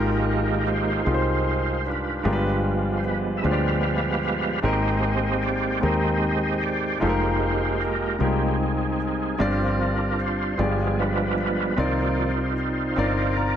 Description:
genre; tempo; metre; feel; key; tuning
slow gospel; 50 BPM (dotted quarters); 6/8; straight; unclear; A4 = 440 Hz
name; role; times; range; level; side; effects
warm concert grand piano; accompaniment; 0.0-13.6 s; G2 to Bb5; -25 LUFS; left 1 dB; none
overdriven tonewheel organ; sustained chords; 0.0-13.6 s; Eb3 to F5; -26 LUFS; right 3 dB; slow rotary speaker, chorus vibrato
fingered electric bass; bass; 0.0-13.6 s; F1 to Eb2; -27 LUFS; equal; none
room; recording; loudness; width
light reverb, small room ambience; nothing above 10.5 kHz; -21 LUFS; side -9 dB against mid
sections
0.0-13.6 A section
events
tonewheel organ solo 0.0-13.6; grand piano fill 13.0-13.6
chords
0.0 Fm11/Ab; 2.3 G7b9; 4.6 Abmaj9; 7.0 Fm11; 9.4 G7sus4; 10.6 G7b9; 11.8 Cm11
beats
1.06 | 2.25 3.44 | 4.63 5.82 | 7.01 8.20 | 9.40 10.59 | 11.78 12.98

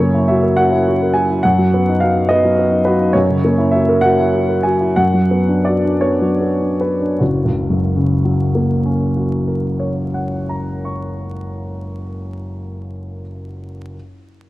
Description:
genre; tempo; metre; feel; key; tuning
classical, romantic character piece for solo piano; 48-72 BPM (dotted quarters); 6/8; rubato; F# major; A4 = 441 Hz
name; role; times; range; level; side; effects
warm grand piano; solo; 0.0-14.0 s; F#1 to C#6; -14 LUFS; equal; none
room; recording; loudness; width
moderate concert hall reverb, RT60 2.1 s; dark, warm production, vinyl crackle; -13 LUFS; side -17 dB against mid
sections
0.0-7.2 A section; 7.2-11.8 B section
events
slowing down 2.3-7.2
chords
0.0 F#7; 1.4 B/F#; 3.1 F#7; 5.0 Bm/F#; 7.2 F#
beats
0.58 | 1.44 2.29 | 3.14 4.02 | 4.96 6.02 | 7.20 8.33 | 9.48 10.62

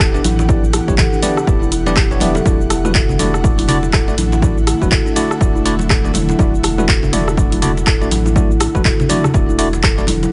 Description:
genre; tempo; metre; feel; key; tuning
afro house; 122 BPM; 4/4; swing 60% on 16ths; unclear; A4 = 440 Hz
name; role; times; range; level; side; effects
ethereal airy pad; sustained chords; 0.0-10.3 s; D3 to F#5; -28 LUFS; equal; ensemble chorus, built-in reverb, sidechain pumping
kalimba; arpeggios; 0.0-10.3 s; D4 to E5; -23 LUFS; equal; sidechain pumping, digital delay
warm sub bass; bass; 0.0-10.3 s; E1 to A1; -23 LUFS; equal; sidechain pumping
deep house drum kit; drums; 0.0-10.3 s; handclaps, hi-hat, rim click, shaker, toms; -22 LUFS; equal; none
electronic kick drum; drums; 0.0-10.0 s; none; -18 LUFS; equal; none
bell-like tine electric piano; stabs; 0.1-10.0 s; A3 to D5; -24 LUFS; equal; sidechain pumping, digital delay
congas; percussion; 0.1-10.3 s; none; -25 LUFS; equal; none
room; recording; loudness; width
little or no reverb; nothing above 10.5 kHz; -15 LUFS; mono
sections
0.0-10.3 A section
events
drop 0.0-10.3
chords
0.0 Em7; 2.5 Dadd9/E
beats
0.00 | 0.49 0.98 1.47 1.96 | 2.46 2.95 3.44 3.93 | 4.42 4.92 5.41 5.90 | 6.39 6.88 7.37 7.87 | 8.36 8.85 9.34 9.83

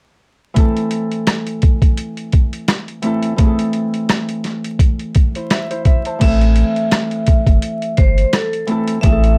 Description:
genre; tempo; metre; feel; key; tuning
hip hop, boom-bap hip-hop; 85 BPM; 4/4; swing 56% on 16ths; A minor; A4 = 442 Hz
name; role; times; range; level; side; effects
Celtic harp; accompaniment; 0.5-9.4 s; E3 to A5; -22 LUFS; equal; none
boom bap sampler-style drum kit; drums; 0.6-9.4 s; crash cymbal, hi-hat, kick drum, rim click, snare drum; -16 LUFS; equal; vintage 12-bit sampler grit
vibraphone with medium hard mallets; melody; 6.2-9.4 s; A4 to E5; -24 LUFS; equal; plate reverb
warm sub bass; bass; 6.2-9.4 s; G1 to A1; -16 LUFS; equal; none
room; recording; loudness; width
light reverb; dark, warm production, vinyl crackle; -16 LUFS; mono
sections
0.6-6.2 A section; 6.2-9.4 B section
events
none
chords
0.6 Am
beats
| 0.56 1.27 1.98 2.68 | 3.39 4.09 4.80 5.51 | 6.21 6.92 7.62 8.33 | 9.04

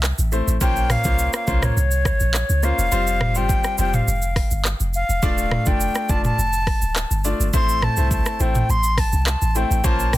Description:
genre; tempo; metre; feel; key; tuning
afrobeats; 104 BPM; 4/4; straight; unclear; A4 = 440 Hz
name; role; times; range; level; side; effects
punchy sub bass; bass; 0.0-10.2 s; D1 to Db2; -21 LUFS; equal; none
afro-pop drum kit; drums; 0.0-10.2 s; handclaps, hi-hat, kick drum, rim click, shaker, toms; -22 LUFS; equal; none
bright concert grand piano; accompaniment; 0.3-10.2 s; G3 to D5; -26 LUFS; left 2 dB; plate reverb
reedy concert flute; melody; 0.6-10.2 s; Db5 to C6; -24 LUFS; left 1 dB; plate reverb, ping-pong delay
room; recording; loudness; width
light reverb; dense, heavily limited modern master; -17 LUFS; side -16 dB against mid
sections
0.0-10.2 A section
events
kick muted 2.9-3.5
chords
0.0 Am; 0.6 Bbmadd9; 2.9 Fsus2; 5.2 Dm; 7.5 Am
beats
0.04 | 0.61 1.19 1.77 2.34 | 2.92 3.50 4.07 4.65 | 5.23 5.80 6.38 6.96 | 7.54 8.11 8.69 9.27 | 9.84

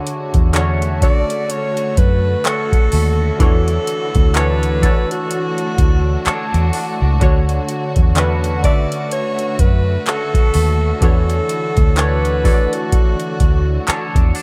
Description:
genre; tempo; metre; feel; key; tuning
contemporary R&B; 63 BPM; 4/4; swing 58% on 16ths; unclear; A4 = 438 Hz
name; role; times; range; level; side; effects
warm analog keys; accompaniment; 0.0-14.4 s; D3 to E5; -26 LUFS; equal; chorus
rich studio string section; sustained chords; 0.0-14.4 s; D3 to F#4; -31 LUFS; equal; sidechain pumping
twangy electric guitar; arpeggios; 0.0-14.4 s; D3 to C#5; -29 LUFS; equal; analog chorus, slapback echo
booming analog drum machine; drums; 0.1-14.4 s; handclaps, hi-hat, kick drum; -18 LUFS; equal; none
vintage muted fingered electric bass; bass; 0.3-14.3 s; C#2 to F#2; -19 LUFS; equal; none
breathy alto saxophone; melody; 1.0-14.4 s; F#4 to D5; -24 LUFS; equal; none
room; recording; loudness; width
little or no reverb; none; -16 LUFS; mono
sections
0.0-14.4 A section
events
none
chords
0.0 Dmaj7; 3.4 E13sus4; 7.2 Dmaj7; 11.0 E13sus4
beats
0.55 1.50 2.45 | 3.40 4.35 5.31 6.26 | 7.21 8.16 9.12 10.07 | 11.02 11.97 12.93 13.88

